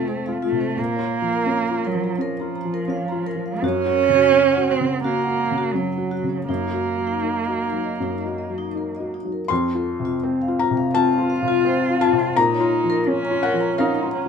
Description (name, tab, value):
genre	neoclassical piano and strings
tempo	83 BPM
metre	4/4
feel	uneven beats, rubato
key	Bb harmonic minor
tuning	A4 = 440 Hz
part	muted cello	second line	0.0-14.3 s	F3 to F4	-22 LUFS	right 6 dB	none
part	felt-muted upright piano	accompaniment	0.0-14.3 s	F2 to C6	-22 LUFS	left 2 dB	none
part	vibraphone with medium mallets	arpeggios	0.1-14.2 s	Eb4 to Bb5	-27 LUFS	left 5 dB	none
room	light reverb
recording	minimal, uncompressed stereo recording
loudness	-19 LUFS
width	side -6 dB against mid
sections	0.0-9.5 A section; 9.5-14.3 B section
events	none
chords	0.0 F; 0.8 Bbm; 3.6 Gb; 6.5 Ebm/Gb; 9.5 F; 12.4 Bbm